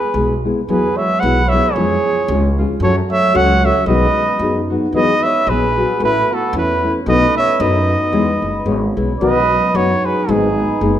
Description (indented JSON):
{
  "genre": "mexican folk, mariachi",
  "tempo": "112 BPM",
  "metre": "2/4",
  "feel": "swing 55% on 8ths, rubato",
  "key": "E major",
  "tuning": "A4 = 439 Hz",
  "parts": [
    { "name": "warm trumpet", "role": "melody", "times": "0.0-11.0 s", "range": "G#4 to F#5", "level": "-18 LUFS", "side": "equal", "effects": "none" },
    { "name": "dark trumpet", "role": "second line", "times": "0.0-11.0 s", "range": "D#4 to C#5", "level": "-21 LUFS", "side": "right 7 dB", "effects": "none" },
    { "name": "nylon-string guitar", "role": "accompaniment", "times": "0.1-11.0 s", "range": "G#2 to C#5", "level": "-19 LUFS", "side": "left 3 dB", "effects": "none" },
    { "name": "upright bass", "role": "bass", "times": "0.1-11.0 s", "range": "F#1 to F#2", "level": "-20 LUFS", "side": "right 1 dB", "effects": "none" },
    { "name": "concert harp", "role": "arpeggios", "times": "0.7-11.0 s", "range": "E#3 to F#4", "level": "-22 LUFS", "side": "left 1 dB", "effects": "none" }
  ],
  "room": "moderate recital hall reverb, RT60 1.8 s",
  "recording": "minimal, uncompressed stereo recording",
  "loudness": "-13 LUFS",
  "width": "side -10 dB against mid",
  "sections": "0.0-9.2 A section; 9.2-11.0 B section",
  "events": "none",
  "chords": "0.0 E; 0.7 Eadd9; 1.8 C#/E#; 2.8 F#m; 3.9 B6; 5.0 Eadd9; 6.0 Aadd9; 7.1 B7; 8.1 E6; 9.2 B; 10.3 G#m"
}